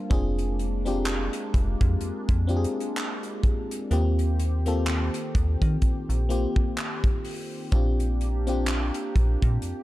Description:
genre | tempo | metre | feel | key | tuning
contemporary R&B | 63 BPM | 4/4 | swing 58% on 16ths | Bb major | A4 = 439 Hz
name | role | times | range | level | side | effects
FM electric piano | accompaniment | 0.0-9.8 s | Bb3 to Bb4 | -31 LUFS | left 2 dB | chorus
chorused pulse-width pad | sustained chords | 0.0-9.8 s | Eb3 to G4 | -35 LUFS | right 1 dB | sidechain pumping
metallic FM bass | bass | 0.1-9.7 s | F1 to Eb3 | -25 LUFS | equal | none
crisp fusion drum kit | drums | 0.1-9.8 s | handclaps, hi-hat, kick drum | -26 LUFS | equal | none
room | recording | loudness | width
small room ambience | dark, warm production | -23 LUFS | side -16 dB against mid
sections
0.0-9.8 A section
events
none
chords
0.1 Bb7/F; 3.9 Eb6; 7.7 Bb69

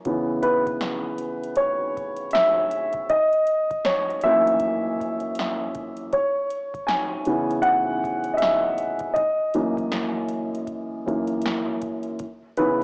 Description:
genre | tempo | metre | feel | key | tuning
lo-fi hip hop | 79 BPM | 4/4 | swing 61% on 16ths | C# dorian | A4 = 440 Hz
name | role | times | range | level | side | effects
dark upright piano | accompaniment | 0.0-12.8 s | F#2 to G#5 | -21 LUFS | equal | cassette tape, low-pass filter
electro analog drum machine | drums | 0.1-12.8 s | hi-hat, kick drum, snare drum | -32 LUFS | equal | cassette tape
room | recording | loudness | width
moderate spring reverb, RT60 1.7 s, digital ambience | home recording on cassette, small speaker sound | -21 LUFS | side -35 dB against mid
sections
0.0-12.8 A section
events
upright piano solo 0.0-12.8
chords
0.0 C#m7; 3.1 F#7; 6.1 C#m7; 9.2 F#7; 12.2 C#m7

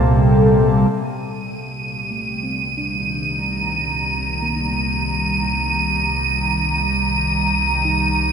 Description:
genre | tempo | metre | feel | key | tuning
ambient | 52 BPM | 4/4 | straight | C dorian | A4 = 440 Hz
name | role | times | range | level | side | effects
airy breathy pad | sustained chords | 0.0-8.3 s | Bb2 to Bb5 | -19 LUFS | equal | chorus
muted felt-like synth keys | arpeggios | 0.0-8.3 s | A3 to Eb4 | -32 LUFS | left 1 dB | chorus, ping-pong delay
warm sub bass | bass | 0.0-8.3 s | C2 | -26 LUFS | right 1 dB | none
wind-like tuned noise texture | texture | 1.2-8.3 s | Eb7 | -21 LUFS | right 1 dB | built-in reverb
room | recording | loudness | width
wet lush hall reverb, RT60 2.8 s | dreamy mix soaked in reverb | -17 LUFS | side -7 dB against mid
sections
0.9-8.3 A section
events
fade-in on synth keys 0.9-8.3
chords
0.0 Gmadd9/C; 0.9 Cm7

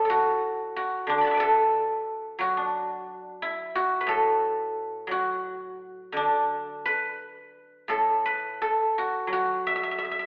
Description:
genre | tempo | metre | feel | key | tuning
chinese traditional | 84-91 BPM | 4/4 | rubato | D gong mode | A4 = 440 Hz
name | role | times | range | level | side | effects
guzheng | solo | 0.0-10.3 s | A2 to D6 | -24 LUFS | equal | none
room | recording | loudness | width
wet recital hall reverb, RT60 1.6 s | recorded in a church or concert hall, telephone sound | -24 LUFS | side -40 dB against mid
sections
0.0-10.3 A section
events
none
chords
none

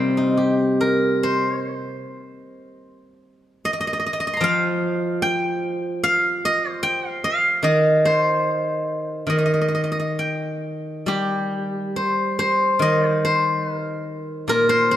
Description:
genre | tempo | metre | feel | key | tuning
chinese traditional, Chinese solo plucked strings | 66-77 BPM | 4/4 | rubato | unclear | A4 = 441 Hz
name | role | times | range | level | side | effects
steel-string zither | solo | 0.0-15.0 s | Bb2 to C6 | -19 LUFS | equal | none
room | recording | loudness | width
moderate concert hall reverb, RT60 2.3 s | none | -19 LUFS | side -12 dB against mid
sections
0.0-11.1 A section; 11.1-15.0 B section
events
none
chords
none

